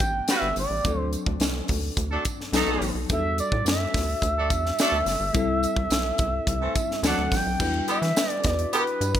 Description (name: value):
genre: polished 1980s jazz-funk pop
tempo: 107 BPM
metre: 4/4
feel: straight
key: E minor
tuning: A4 = 439 Hz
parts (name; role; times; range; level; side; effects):
- expressive synth lead; melody; 0.0-9.2 s; B4 to G5; -27 LUFS; equal; chorus
- bell-like FM electric piano; accompaniment; 0.0-9.2 s; E3 to B4; -31 LUFS; left 4 dB; wide subtle chorus
- rubbery square bass; bass; 0.0-9.2 s; F#1 to E3; -29 LUFS; equal; none
- crisp fusion drum kit; drums; 0.0-9.2 s; crash cymbal, hi-hat, kick drum, snare drum; -27 LUFS; equal; gated reverb
- tambourine; percussion; 0.0-9.1 s; none; -39 LUFS; right 9 dB; none
- warm horn section; second line; 0.3-8.8 s; D3 to B4; -28 LUFS; right 2 dB; none
room: light reverb, small room ambience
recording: none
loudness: -22 LUFS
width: side -10 dB against mid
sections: 0.0-7.6 A section; 7.6-9.2 B section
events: none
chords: 0.0 Gmaj7; 0.9 D7; 2.5 B7; 3.1 Em11; 5.4 C6; 7.0 D7; 7.6 Em9